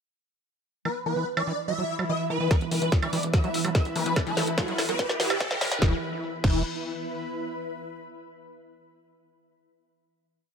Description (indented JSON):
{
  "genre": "psychedelic trance",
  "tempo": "145 BPM",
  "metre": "4/4",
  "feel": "straight",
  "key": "unclear",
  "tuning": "A4 = 440 Hz",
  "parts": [
    { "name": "swarming rave lead", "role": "melody", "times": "0.9-6.6 s", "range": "E4 to E5", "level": "-31 LUFS", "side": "equal", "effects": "chorus, phaser, sidechain pumping, digital delay" },
    { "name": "evolving wavetable pad", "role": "sustained chords", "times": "1.5-5.9 s", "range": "E3", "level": "-36 LUFS", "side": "right 4 dB", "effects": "ensemble chorus, built-in reverb, phaser, sidechain pumping" },
    { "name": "overdriven acid bass", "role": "riff", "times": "0.9-6.6 s", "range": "E3 to F#3", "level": "-32 LUFS", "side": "moving between left 6 dB and right 5 dB", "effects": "distortion, auto-pan, sidechain pumping, digital delay" },
    { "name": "drum and bass drum kit", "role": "drums", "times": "0.9-6.5 s", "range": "crash cymbal, hi-hat, snare drum, woodblock", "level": "-30 LUFS", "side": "equal", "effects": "none" },
    { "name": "granular cloud pad", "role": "texture", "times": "2.1-7.4 s", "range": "E4 to B5", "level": "-35 LUFS", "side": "left 1 dB", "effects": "built-in reverb, sidechain pumping" },
    { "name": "swell and riser", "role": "sound effects", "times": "1.8-5.8 s", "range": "none", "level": "-37 LUFS", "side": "equal", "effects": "none" },
    { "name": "electronic kick drum", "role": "drums", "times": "2.5-6.5 s", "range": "none", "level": "-23 LUFS", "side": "equal", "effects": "none" },
    { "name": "tight sequencer bass", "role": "bass", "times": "2.6-6.6 s", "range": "E1", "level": "-35 LUFS", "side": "equal", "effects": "none" }
  ],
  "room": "light reverb",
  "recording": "high-pass filter",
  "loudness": "-24 LUFS",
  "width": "side -6 dB against mid",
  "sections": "0.9-2.5 intro; 2.5-5.8 build; 5.8-7.5 final chord",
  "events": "swell 1.8-2.5; build-up 2.5-5.8; drum fill 2.5-5.8; filter sweep on acid bass 2.5-5.8; filter sweep 2.5-5.8; riser 3.9-5.8",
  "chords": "0.9 E5",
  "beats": "| 0.85 1.27 1.68 2.09 | 2.51 2.92 3.34 3.75 | 4.16 4.58 4.99 5.41 | 5.82 6.23 6.65 7.06"
}